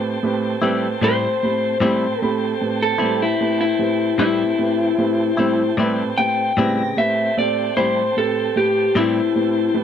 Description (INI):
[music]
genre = blues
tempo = 50 BPM (dotted quarters)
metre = 12/8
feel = straight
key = A minor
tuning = A4 = 440 Hz
[part]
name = warm upright piano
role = accompaniment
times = 0.0-9.8 s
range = A2 to B5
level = -22 LUFS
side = right 4 dB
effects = none
[part]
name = tonewheel organ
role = sustained chords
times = 0.0-9.8 s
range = C#3 to Bb5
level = -28 LUFS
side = right 1 dB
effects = fast rotary speaker
[part]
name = clean electric guitar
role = accompaniment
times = 0.6-9.2 s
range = A2 to E4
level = -22 LUFS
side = left 4 dB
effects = tremolo
[part]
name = electric guitar through a small old amp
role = melody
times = 1.0-9.7 s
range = E4 to G5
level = -19 LUFS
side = left 2 dB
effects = none
[sound]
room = little or no reverb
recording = dry, close 1970s-style studio recording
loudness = -17 LUFS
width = side -8 dB against mid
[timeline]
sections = 0.0-9.8 A section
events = none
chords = 0.0 Am7